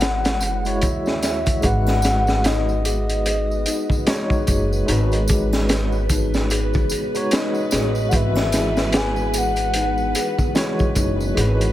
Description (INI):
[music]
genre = trip hop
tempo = 74 BPM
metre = 4/4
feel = swing 59% on 16ths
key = G# minor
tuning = A4 = 440 Hz
[part]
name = pure breathy sine lead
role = melody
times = 0.0-10.5 s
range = D#5 to G#5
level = -25 LUFS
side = left 2 dB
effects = lush chorus, tape echo
[part]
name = bright tine electric piano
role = accompaniment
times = 0.0-11.7 s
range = E3 to C#5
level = -26 LUFS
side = equal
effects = tremolo, tape echo
[part]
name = string machine, cellos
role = sustained chords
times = 0.0-11.7 s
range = G#3 to B4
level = -30 LUFS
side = right 1 dB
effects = ensemble chorus, vintage 12-bit sampler grit
[part]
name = upright bass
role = bass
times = 0.0-11.7 s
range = F#1 to D#2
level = -22 LUFS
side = equal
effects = none
[part]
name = crunchy breakbeat drum kit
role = drums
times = 0.0-11.7 s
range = hi-hat, kick drum, snare drum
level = -22 LUFS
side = equal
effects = none
[part]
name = tambourine and triangle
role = percussion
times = 0.0-11.7 s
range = none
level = -34 LUFS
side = right 1 dB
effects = none
[part]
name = celesta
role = arpeggios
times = 1.6-11.7 s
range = D#4 to G#4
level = -28 LUFS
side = left 2 dB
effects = ping-pong delay
[sound]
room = small room ambience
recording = none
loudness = -18 LUFS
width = side -13 dB against mid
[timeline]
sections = 0.0-1.6 A section; 1.6-11.7 B section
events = none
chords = 0.0 Esus2; 1.6 G#m7; 8.1 Esus2